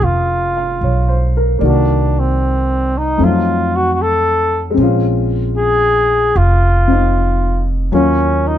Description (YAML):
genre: jazz ballad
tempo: 76 BPM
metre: 4/4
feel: swing 68% on 8ths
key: Bb minor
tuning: A4 = 440 Hz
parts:
  - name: warm flugelhorn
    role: melody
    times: 0.0-8.6 s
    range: C4 to A4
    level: -16 LUFS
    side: equal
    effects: none
  - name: warm upright piano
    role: accompaniment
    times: 0.0-8.6 s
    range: Eb3 to F5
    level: -18 LUFS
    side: left 3 dB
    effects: none
  - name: upright bass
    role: bass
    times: 0.0-8.6 s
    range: F1 to F2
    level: -16 LUFS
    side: right 1 dB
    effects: none
room: little or no reverb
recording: dark, warm production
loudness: -12 LUFS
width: side -11 dB against mid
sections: 0.0-8.6 A section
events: none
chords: 0.0 Bbm7; 1.6 Cm7b5; 3.2 F7b9; 4.8 Bbm9; 7.9 Ebm7